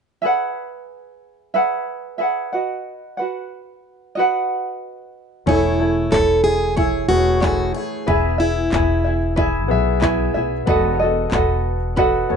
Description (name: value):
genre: acoustic pop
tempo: 92 BPM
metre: 4/4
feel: straight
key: E major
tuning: A4 = 440 Hz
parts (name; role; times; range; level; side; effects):
- tenor ukulele; accompaniment; 0.2-12.4 s; E4 to F#5; -20 LUFS; right 2 dB; none
- picked plugged-in steel-string acoustic guitar; melody; 5.5-9.3 s; E4 to A4; -20 LUFS; equal; slapback echo
- clear concert grand piano; accompaniment; 5.5-12.4 s; A3 to G#5; -25 LUFS; left 5 dB; none
- upright bass; bass; 5.5-12.4 s; E1 to B1; -22 LUFS; left 1 dB; none
- pop drum kit; drums; 5.5-12.1 s; handclaps, kick drum; -23 LUFS; left 1 dB; none
room: little or no reverb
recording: nothing above 10.8 kHz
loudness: -17 LUFS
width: side -6 dB against mid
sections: 0.2-5.5 A section; 5.5-12.4 B section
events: none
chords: 0.2 Eadd9; 2.5 B; 5.5 Amaj7/E; 8.1 E; 10.7 B7/E